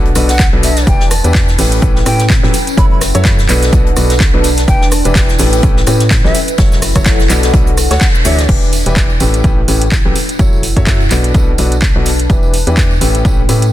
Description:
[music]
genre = piano house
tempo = 126 BPM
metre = 4/4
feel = swing 56% on 16ths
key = E dorian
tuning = A4 = 440 Hz
[part]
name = warm upright piano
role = riff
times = 0.0-13.6 s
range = A2 to C#5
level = -17 LUFS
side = left 1 dB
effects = sidechain pumping, tape echo
[part]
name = organ-like FM bass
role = bass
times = 0.0-13.7 s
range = E1 to A2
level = -15 LUFS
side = equal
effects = sidechain pumping
[part]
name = warbly tape-like pad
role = texture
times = 0.0-13.7 s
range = C#4 to A5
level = -21 LUFS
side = equal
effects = chorus, built-in reverb, phaser, sidechain pumping
[part]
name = warm soul drum kit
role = drums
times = 0.1-8.5 s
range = hi-hat, snare drum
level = -25 LUFS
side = left 2 dB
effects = sidechain pumping on hats, high-pass filter on hats, high-pass filter on snare, high-pass filter on room
[part]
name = house drum kit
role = drums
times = 0.2-13.7 s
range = cabasa, crash cymbal, handclaps, hi-hat, rim click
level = -18 LUFS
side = equal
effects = overdrive
[part]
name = tambourine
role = percussion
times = 0.2-13.7 s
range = none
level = -27 LUFS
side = right 3 dB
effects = none
[part]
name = breathy mellow silver concert flute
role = melody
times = 0.3-8.5 s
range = E5 to B5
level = -23 LUFS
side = equal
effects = tape echo
[part]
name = electronic kick drum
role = drums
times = 0.4-13.4 s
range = none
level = -12 LUFS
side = equal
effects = overdrive
[sound]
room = small room reverb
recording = dense, heavily limited modern master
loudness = -9 LUFS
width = side -14 dB against mid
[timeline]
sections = 0.0-8.5 A section; 8.5-13.7 B section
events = drop 0.0-8.5; band accent 8.0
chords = 0.0 Bm7; 0.9 Em7; 1.6 A9; 2.5 F#m7; 3.5 Bm7; 4.7 Em7; 5.4 A9; 6.3 F#m7; 7.3 Bm7; 8.0 Dmaj7; 8.5 Em7; 9.2 A9; 10.2 F#m7; 11.1 Bm7; 12.3 Em7; 13.0 A9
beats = 0.39 | 0.87 1.35 1.82 2.30 | 2.77 3.25 3.73 4.20 | 4.68 5.16 5.63 6.11 | 6.58 7.06 7.54 8.01 | 8.49 8.97 9.44 9.92 | 10.39 10.87 11.35 11.82 | 12.30 12.78 13.25

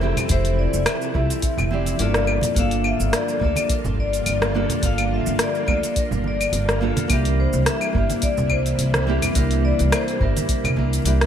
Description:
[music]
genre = sunset chillout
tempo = 106 BPM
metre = 4/4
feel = swing 55% on 16ths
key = unclear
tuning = A4 = 441 Hz
[part]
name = vibraphone with medium hard mallets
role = melody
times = 0.0-11.3 s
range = Bb4 to F5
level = -26 LUFS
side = left 3 dB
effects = ping-pong delay
[part]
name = nylon-string guitar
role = accompaniment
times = 0.0-11.3 s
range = Bb3 to D5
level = -26 LUFS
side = right 2 dB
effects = auto-pan
[part]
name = soft string machine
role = sustained chords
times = 0.0-11.3 s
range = C3 to F4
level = -30 LUFS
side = equal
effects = ensemble chorus
[part]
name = upright bass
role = bass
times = 0.0-11.3 s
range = F1 to D2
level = -23 LUFS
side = equal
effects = none
[part]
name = deep house drum kit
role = drums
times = 0.2-11.3 s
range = claves, hi-hat, rim click, shaker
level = -25 LUFS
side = left 1 dB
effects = overdrive, gated reverb
[part]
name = congas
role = percussion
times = 0.2-10.9 s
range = none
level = -29 LUFS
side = right 2 dB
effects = none
[part]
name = electronic kick drum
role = drums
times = 0.3-10.9 s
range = none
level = -24 LUFS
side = equal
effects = overdrive
[sound]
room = light reverb, small room ambience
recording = bright 1980s-style digital production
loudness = -18 LUFS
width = side -9 dB against mid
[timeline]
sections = 0.0-11.3 A section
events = none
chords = 0.0 Fmaj7; 2.3 Gm7; 7.1 C7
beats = | 0.30 0.87 1.43 2.00 | 2.56 3.13 3.70 4.26 | 4.83 5.40 5.96 6.53 | 7.09 7.66 8.23 8.79 | 9.36 9.92 10.49 11.06

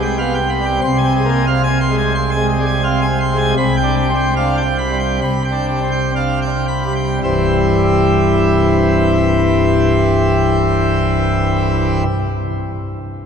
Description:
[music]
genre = classical, organ toccata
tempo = 53-97 BPM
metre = 4/4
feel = straight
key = unclear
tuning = A4 = 441 Hz
[part]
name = pipe organ, plenum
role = solo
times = 0.0-12.0 s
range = C1 to C6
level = -13 LUFS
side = equal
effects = none
[sound]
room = wet cathedral reverb, RT60 4.8 s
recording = minimal, uncompressed stereo recording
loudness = -13 LUFS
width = side -7 dB against mid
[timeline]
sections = 0.0-7.2 A section; 7.2-11.7 B section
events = slowing down 0.0-7.2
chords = 0.0 G7/C; 0.8 Fm/C; 3.6 G7/C; 7.2 C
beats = 0.20 | 0.83 1.47 2.14 2.84 | 3.58 4.37 5.23 6.17 | 7.24 8.36 9.47 10.59

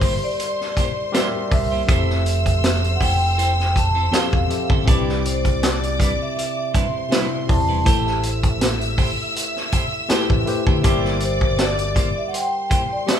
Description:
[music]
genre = lush 1970s-style soul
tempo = 80 BPM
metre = 4/4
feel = swing 54% on 16ths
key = C major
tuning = A4 = 442 Hz
[part]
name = vibraphone with soft mallets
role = melody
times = 0.0-13.2 s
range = C5 to A5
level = -25 LUFS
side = right 1 dB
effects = none
[part]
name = warm studio string section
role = second line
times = 0.0-13.2 s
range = C5 to E6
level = -28 LUFS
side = left 1 dB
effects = none
[part]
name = barky tine electric piano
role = accompaniment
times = 0.0-13.2 s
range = C3 to F5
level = -26 LUFS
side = left 3 dB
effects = none
[part]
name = clean electric guitar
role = riff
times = 0.0-13.2 s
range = G3 to C5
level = -29 LUFS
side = right 3 dB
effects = spring reverb
[part]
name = fingered electric bass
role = bass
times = 0.0-12.1 s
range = E1 to D2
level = -23 LUFS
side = equal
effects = none
[part]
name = vintage drum kit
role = drums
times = 0.0-13.2 s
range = hi-hat, kick drum, snare drum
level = -20 LUFS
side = equal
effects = none
[sound]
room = moderate large studio reverb, RT60 0.9 s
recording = band playing live in one room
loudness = -17 LUFS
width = side -8 dB against mid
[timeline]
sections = 0.0-13.2 A section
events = none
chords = 0.0 C7/G; 1.9 Fmaj7; 4.9 Cmaj9; 7.9 Am7; 10.8 C7/G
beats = 0.39 1.14 | 1.89 2.63 3.38 4.13 | 4.87 5.62 6.37 7.11 | 7.86 8.61 9.35 10.10 | 10.85 11.59 12.34 13.09

